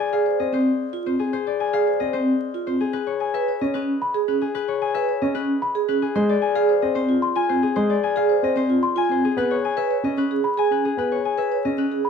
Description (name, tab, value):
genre	classical, minimalist pattern music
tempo	112 BPM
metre	3/4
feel	straight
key	unclear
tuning	A4 = 439 Hz
part	concert harp	melody	0.0-12.1 s	Ab4 to Ab5	-24 LUFS	left 8 dB	none
part	vibraphone with soft mallets	arpeggios	0.1-12.1 s	C4 to Db5	-22 LUFS	right 3 dB	none
part	dark baby grand piano	accompaniment	0.4-11.8 s	Ab3 to Db4	-24 LUFS	right 1 dB	none
part	small celesta	arpeggios	4.0-12.1 s	Cb6 to C6	-26 LUFS	left 3 dB	none
room	moderate large studio reverb, RT60 0.9 s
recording	vinyl crackle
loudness	-19 LUFS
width	side -6 dB against mid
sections	0.0-12.1 A section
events	none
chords	0.0 Fm7; 2.9 Dbm7; 6.2 Fm7; 9.4 Dbm7